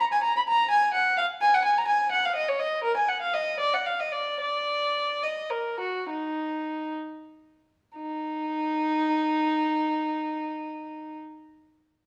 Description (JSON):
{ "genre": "classical, baroque-style suite movement for unaccompanied violin", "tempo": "58-87 BPM (dotted quarters)", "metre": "12/8", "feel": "rubato", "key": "Eb minor", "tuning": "A4 = 440 Hz", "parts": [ { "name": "dark violin", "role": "solo", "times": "0.0-11.2 s", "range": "Eb4 to Cb6", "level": "-27 LUFS", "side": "equal", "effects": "none" } ], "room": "moderate stone room reverb, RT60 1.3 s", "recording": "dark, warm production", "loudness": "-26 LUFS", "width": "mono", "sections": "0.0-8.0 A section; 8.0-11.7 B section", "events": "slowing down 2.4-8.0", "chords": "none" }